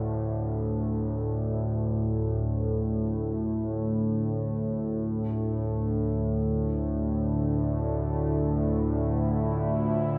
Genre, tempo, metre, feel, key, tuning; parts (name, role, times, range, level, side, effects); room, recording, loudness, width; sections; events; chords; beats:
dark ambient drone; free time; D minor; A4 = 439 Hz
dark baby grand piano; arpeggios; 0.0-1.2 s; G2 to D4; -59 LUFS; equal
analog drone; drone; 0.0-10.2 s; D2 to A2; -29 LUFS; equal; chorus
sweeping resonant pad; sustained chords; 5.0-10.2 s; D3 to F4; -32 LUFS; equal; chorus, phaser
wet cathedral reverb, RT60 5.1 s; -28 LUFS; mono
0.0-10.2 A section
0.0 D5; 5.0 Dm
free time